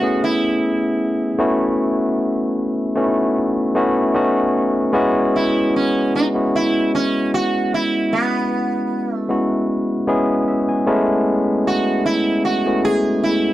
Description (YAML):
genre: R&B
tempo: 76 BPM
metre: 4/4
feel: swing 55% on 16ths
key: E major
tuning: A4 = 436 Hz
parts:
  - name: sitar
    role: melody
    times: 0.0-13.5 s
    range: B3 to G#4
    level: -21 LUFS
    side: right 2 dB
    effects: none
  - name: barky tine electric piano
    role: accompaniment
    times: 0.0-13.5 s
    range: G#3 to A5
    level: -17 LUFS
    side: left 1 dB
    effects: overdrive
room: small room ambience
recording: dry, close 1970s-style studio recording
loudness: -16 LUFS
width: side -14 dB against mid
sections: 0.0-4.9 A section; 4.9-13.5 A section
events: tine electric piano fill 10.1-11.3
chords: 0.0 Amaj9; 1.4 B9sus4; 4.2 B9; 4.9 E69; 10.9 Amaj9